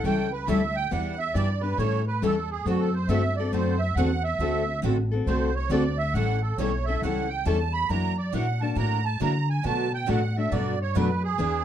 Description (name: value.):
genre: acoustic string swing (jazz manouche).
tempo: 137 BPM.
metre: 4/4.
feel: swing 64% on 8ths.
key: A mixolydian.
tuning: A4 = 437 Hz.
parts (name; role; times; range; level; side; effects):
musette accordion; second line; 0.0-11.6 s; F#4 to B5; -29 LUFS; right 6 dB; none.
picked steel-string acoustic guitar; accompaniment; 0.0-11.6 s; B2 to A4; -29 LUFS; left 6 dB; none.
picked steel-string acoustic guitar; accompaniment; 0.0-11.6 s; B2 to B4; -32 LUFS; right 7 dB; none.
upright bass; bass; 0.0-11.6 s; A1 to D3; -27 LUFS; equal; none.
room: moderate club reverb, RT60 0.7 s.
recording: dark, warm production.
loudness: -23 LUFS.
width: side -10 dB against mid.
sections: 0.0-11.6 A section.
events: accordion solo 0.0-11.6.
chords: 0.0 A7; 0.9 Em7; 1.8 A7; 2.7 D7; 6.2 A7; 7.9 F#7alt; 9.6 Bm7.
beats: 0.05 0.49 | 0.92 1.36 1.79 2.23 | 2.66 3.10 3.54 3.97 | 4.41 4.84 5.28 5.72 | 6.15 6.59 7.03 7.46 | 7.90 8.34 8.78 9.21 | 9.65 10.09 10.52 10.96 | 11.40.